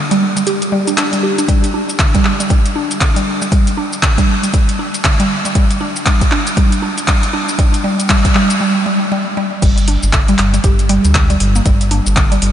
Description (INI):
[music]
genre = afro house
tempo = 118 BPM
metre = 4/4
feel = swing 60% on 16ths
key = unclear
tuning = A4 = 440 Hz
[part]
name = mallet-like synth pluck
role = arpeggios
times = 0.0-12.4 s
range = D3 to G4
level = -16 LUFS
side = equal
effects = chorus, phaser, sidechain pumping, ping-pong delay
[part]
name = deep house drum kit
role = drums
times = 0.1-12.5 s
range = crash cymbal, handclaps, hi-hat, shaker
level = -18 LUFS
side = equal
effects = small room ambience
[part]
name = electronic kick drum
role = drums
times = 1.5-12.3 s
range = none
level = -13 LUFS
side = equal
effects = small room ambience
[part]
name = round analog bass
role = bass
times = 9.6-12.5 s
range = G1 to D2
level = -14 LUFS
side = equal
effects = sidechain pumping
[sound]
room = wet huge ambient reverb, RT60 6.3 s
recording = dreamy mix soaked in reverb, nothing above 10.6 kHz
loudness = -11 LUFS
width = side -10 dB against mid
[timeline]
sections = 0.0-9.6 A section; 9.6-12.5 B section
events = build-up 0.0-9.6; filter sweep on synth pluck 0.0-9.6; break 8.6-9.6; drop 9.6-12.5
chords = 0.0 G5